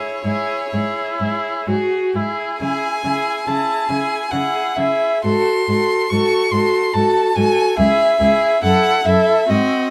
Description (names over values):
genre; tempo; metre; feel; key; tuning
classical, slow romantic movement for string quartet; 62-73 BPM; 3/4; rubato; C# minor; A4 = 442 Hz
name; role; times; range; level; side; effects
rich violin; melody; 0.0-9.9 s; C#5 to C#6; -21 LUFS; equal; none
rich violin; second line; 0.0-9.9 s; F#4 to A4; -25 LUFS; equal; none
rich viola; accompaniment; 0.0-9.9 s; B#3 to F#4; -24 LUFS; equal; none
rich cello; bass; 0.2-9.6 s; C#2 to C#3; -23 LUFS; equal; none
room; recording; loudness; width
moderate studio ambience, RT60 0.5 s; none; -18 LUFS; mono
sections
0.0-9.9 A section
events
none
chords
0.0 C#m/G#; 1.7 Eadd9; 2.6 C#m; 5.3 G#7b9; 7.8 C#m (rootless); 8.6 F#m7